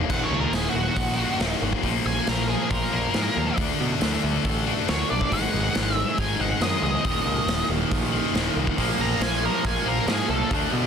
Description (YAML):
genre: quiet-loud alternative rock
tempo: 138 BPM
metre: 4/4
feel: straight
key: unclear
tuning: A4 = 440 Hz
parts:
  - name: twelve-string electric guitar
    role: arpeggios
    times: 0.0-7.1 s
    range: Eb2 to A4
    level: -32 LUFS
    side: right 9 dB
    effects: analog chorus, digital delay
  - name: high-gain distorted guitar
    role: riff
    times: 0.0-10.9 s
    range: Eb2 to D4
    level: -27 LUFS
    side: left 11 dB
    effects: distortion
  - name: growling picked electric bass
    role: bass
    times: 0.0-10.9 s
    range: Eb1 to Cb3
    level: -28 LUFS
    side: equal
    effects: overdrive
  - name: octave-fuzz lead guitar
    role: melody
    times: 0.1-10.5 s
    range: Gb4 to Bb5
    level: -29 LUFS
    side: right 2 dB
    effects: distortion, digital delay
  - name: raw garage drum kit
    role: drums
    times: 0.1-10.6 s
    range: crash cymbal, hi-hat, kick drum, snare drum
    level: -27 LUFS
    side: equal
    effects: none
  - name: cranked stack guitar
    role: riff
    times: 7.0-10.9 s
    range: Eb2 to D4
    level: -29 LUFS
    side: right 16 dB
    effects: overdrive
room: light reverb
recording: dense, heavily limited modern master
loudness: -21 LUFS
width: side -7 dB against mid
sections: 0.1-10.9 A section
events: lead electric guitar solo 0.1-10.9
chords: 0.1 Ebm; 1.8 Bb; 3.6 D; 5.3 Ab; 7.1 Eb5; 8.8 Bb5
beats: | 0.10 0.54 0.97 1.41 | 1.84 2.28 2.71 3.15 | 3.58 4.01 4.45 4.88 | 5.32 5.75 6.19 6.62 | 7.05 7.49 7.92 8.35 | 8.78 9.22 9.65 10.08 | 10.51